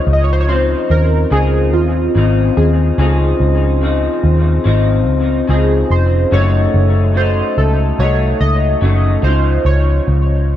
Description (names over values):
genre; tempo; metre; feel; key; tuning
indie pop, bedroom pop; 72 BPM; 4/4; swing 60% on 16ths; Db major; A4 = 439 Hz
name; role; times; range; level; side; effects
warm analog keys; melody; 0.0-10.6 s; F4 to Eb5; -20 LUFS; right 2 dB; analog chorus, tape echo
electric guitar through a small old amp; accompaniment; 0.0-10.6 s; Gb2 to Eb4; -17 LUFS; left 3 dB; wide subtle chorus, warbly pitch drift, tape echo
vintage muted picked electric bass; bass; 0.1-10.6 s; F1 to Eb2; -13 LUFS; equal; none
room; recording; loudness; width
light reverb; echo-heavy mix; -11 LUFS; side -12 dB against mid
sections
0.0-10.6 A section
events
none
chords
0.0 Dbmaj9; 6.3 Gbm6; 9.2 Dbmaj9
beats
0.49 1.32 2.15 | 2.99 3.82 4.66 5.49 | 6.32 7.16 7.99 8.83 | 9.66 10.50